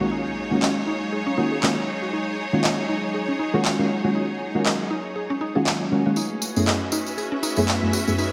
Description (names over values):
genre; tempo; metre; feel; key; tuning
deep house; 119 BPM; 4/4; swing 57% on 16ths; Eb minor; A4 = 441 Hz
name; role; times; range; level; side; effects
hollow soft pad; sustained chords; 0.0-8.3 s; Gb3 to Ab5; -35 LUFS; equal; ensemble chorus
mallet-like synth pluck; arpeggios; 0.0-8.3 s; Db4 to Eb5; -32 LUFS; equal; chorus, dub echo
deep mellow chord stab; stabs; 0.0-8.3 s; Gb2 to Ab4; -26 LUFS; equal; ensemble chorus, dub echo
warm studio string section; texture; 0.0-8.3 s; Db4 to Fb5; -32 LUFS; equal; none
electronic handclaps; drums; 0.6-7.8 s; none; -29 LUFS; equal; none
tambourine; percussion; 6.2-8.3 s; none; -32 LUFS; equal; none
room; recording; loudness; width
moderate lush hall reverb, RT60 1.8 s; vinyl crackle; -23 LUFS; mono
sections
0.0-8.3 A section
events
filter sweep on synth arpeggio sound 0.0-8.3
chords
0.0 Ebm11; 6.2 Gbm11